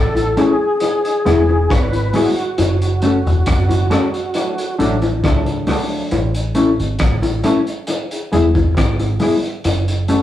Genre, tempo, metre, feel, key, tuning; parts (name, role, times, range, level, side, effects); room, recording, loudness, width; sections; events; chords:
roots reggae; 68 BPM; 4/4; straight; A major; A4 = 440 Hz
percussive tonewheel organ; melody; 0.0-4.8 s; F#4 to B4; -20 LUFS; equal; overdrive, chorus vibrato, slow rotary speaker
deep dub fingered electric bass; bass; 0.0-10.2 s; E1 to C#2; -18 LUFS; equal
bongos; percussion; 0.1-9.9 s; -23 LUFS; left 2 dB
crunchy breakbeat drum kit; drums; 0.2-10.2 s; hi-hat, kick drum, rim click; -21 LUFS; equal; dub echo
mellow electric guitar; accompaniment; 0.4-10.2 s; G#3 to F#4; -17 LUFS; left 2 dB
barky reed electric piano; stabs; 0.4-10.2 s; B3 to A4; -24 LUFS; left 2 dB; overdrive, fast tremolo
mellow trombone section; second line; 4.3-6.1 s; F#3 to D4; -24 LUFS; equal
moderate stone room reverb, RT60 1.0 s; rough rehearsal-room recording, warm saturation, small room reverb; -14 LUFS; side -12 dB against mid
0.0-10.2 A section
band accent 2.6-6.1
0.0 A; 0.8 E; 2.6 F#m; 4.3 D; 6.1 A; 7.9 E; 9.6 F#m